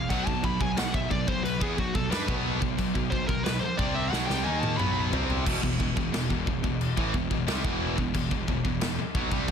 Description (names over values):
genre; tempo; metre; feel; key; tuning
heavy metal; 90 BPM; 4/4; straight; unclear; A4 = 440 Hz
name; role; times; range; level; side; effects
high-gain lead guitar; melody; 0.0-5.0 s; F#4 to B5; -32 LUFS; equal; distortion, tape echo
distorted electric guitar; riff; 0.0-9.5 s; E2 to D#4; -34 LUFS; right 13 dB; overdrive
scooped high-gain guitar; riff; 0.0-9.5 s; E2 to D#4; -33 LUFS; left 12 dB; distortion
thick fuzz guitar; riff; 0.0-9.5 s; E2 to D#4; -34 LUFS; equal; distortion
fuzz picked electric bass; bass; 0.0-9.5 s; E1 to G2; -33 LUFS; equal; overdrive
big rock drum kit; drums; 0.1-9.5 s; china cymbal, crash cymbal, kick drum, snare drum, toms; -30 LUFS; equal; none
room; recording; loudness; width
little or no reverb; dense, heavily limited modern master; -25 LUFS; side -7 dB against mid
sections
0.0-5.5 A section; 5.5-9.5 B section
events
lead electric guitar solo 0.0-5.5; drum fill 4.1-5.5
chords
0.1 B5; 5.5 E5